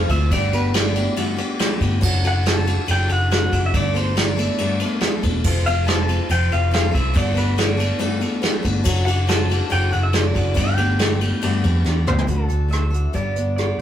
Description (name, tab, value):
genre	folk rock and heartland rock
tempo	140 BPM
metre	4/4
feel	straight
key	G major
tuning	A4 = 435 Hz
part	pedal steel guitar	melody	0.0-13.8 s	A4 to A5	-25 LUFS	equal	none
part	picked steel-string acoustic guitar	accompaniment	0.0-13.8 s	G2 to B4	-25 LUFS	left 3 dB	none
part	picked electric bass	bass	0.0-13.8 s	E1 to F2	-20 LUFS	equal	none
part	soft brush drum kit	drums	0.1-13.8 s	crash cymbal, hi-hat, kick drum, ride cymbal, rim click, snare drum, toms	-22 LUFS	right 1 dB	none
room	moderate small room reverb, RT60 0.6 s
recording	rough rehearsal-room recording, warm saturation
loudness	-17 LUFS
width	side -10 dB against mid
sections	0.0-12.3 A section; 12.3-13.8 B section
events	drum fill 11.9-12.3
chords	0.3 Gadd9; 2.0 D/F#; 3.7 Gadd9; 5.4 F; 7.2 Gadd9; 8.9 D/F#; 10.6 Gadd9; 12.3 D; 13.1 G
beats	| 0.31 0.74 1.17 1.59 | 2.02 2.45 2.88 3.31 | 3.73 4.16 4.59 5.02 | 5.44 5.87 6.30 6.72 | 7.15 7.58 8.01 8.43 | 8.86 9.29 9.72 10.14 | 10.57 11.00 11.43 11.86 | 12.29 12.71 13.14 13.57